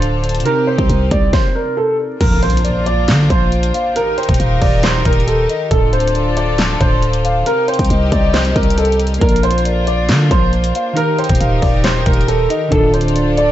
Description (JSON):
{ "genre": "hip hop, trap", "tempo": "137 BPM", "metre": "4/4", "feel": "half-time", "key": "Bb major", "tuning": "A4 = 441 Hz", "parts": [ { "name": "dark baby grand piano", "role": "melody", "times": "0.0-13.5 s", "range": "A4 to D5", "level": "-18 LUFS", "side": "right 1 dB", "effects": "wide subtle chorus, diffuse ambient delay" }, { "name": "glassy digital keys", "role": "accompaniment", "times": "0.0-2.2, 9.2-13.5 s", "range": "C3 to F5", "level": "-22 LUFS", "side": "right 2 dB", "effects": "chorus" }, { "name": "rich symphonic string section", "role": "sustained chords", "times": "0.0-13.5 s", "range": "C3 to Bb4", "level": "-23 LUFS", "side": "left 1 dB", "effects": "none" }, { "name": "growling 808-style bass", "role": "bass", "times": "0.0-13.5 s", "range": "D1 to D3", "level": "-16 LUFS", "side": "equal", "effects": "none" }, { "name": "dubstep drum kit", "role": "drums", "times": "0.0-13.5 s", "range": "crash cymbal, handclaps, hi-hat, kick drum, snare drum", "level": "-17 LUFS", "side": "equal", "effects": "none" }, { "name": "impact", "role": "sound effects", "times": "2.2-4.0 s", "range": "none", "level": "-23 LUFS", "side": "equal", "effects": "none" }, { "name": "hollow clarinet-like synth lead", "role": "second line", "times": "2.4-13.5 s", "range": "C5 to G5", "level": "-24 LUFS", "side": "left 3 dB", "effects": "chorus, tremolo, diffuse ambient delay" } ], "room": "moderate plate reverb, RT60 1.3 s, digital ambience", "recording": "dreamy mix soaked in reverb, vinyl crackle, nothing above 7.9 kHz", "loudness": "-12 LUFS", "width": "side -12 dB against mid", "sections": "0.0-2.2 A section; 2.2-13.5 B section", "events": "stop 1.3-2.2; impact 2.2-4.0", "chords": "0.5 Cm; 2.2 Bb; 4.0 Eb; 5.7 Dm; 7.5 Cm; 9.2 Bb; 11.0 Eb; 12.7 Dm" }